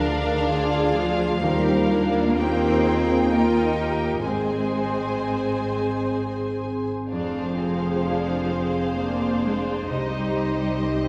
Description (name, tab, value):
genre	cinematic, emotional film score for orchestra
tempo	64 BPM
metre	3/4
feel	rubato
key	unclear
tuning	A4 = 442 Hz
part	rich studio violin section	melody	0.0-11.1 s	Eb5 to Ab5	-34 LUFS	equal	none
part	warm studio violin section	second line	0.0-11.1 s	Bb3 to Eb4	-32 LUFS	equal	none
part	warm studio viola section	accompaniment	0.0-11.1 s	D4 to C5	-30 LUFS	equal	none
part	mellow French horn section	sustained chords	0.0-11.1 s	C4 to Bb4	-31 LUFS	equal	none
part	concert harp	arpeggios	0.0-11.1 s	F2 to F5	-34 LUFS	equal	none
part	dark studio cello section	bass	0.0-11.1 s	D3 to C4	-30 LUFS	equal	none
part	rich studio double bass section	bass	0.0-11.1 s	F1 to Eb2	-31 LUFS	equal	none
room	wet scoring stage reverb, RT60 1.9 s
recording	recorded in a church or concert hall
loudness	-23 LUFS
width	mono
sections	0.0-11.1 A section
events	none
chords	0.0 Ddim; 1.4 Ebadd9; 4.2 Ab; 7.1 Fm; 9.9 Cm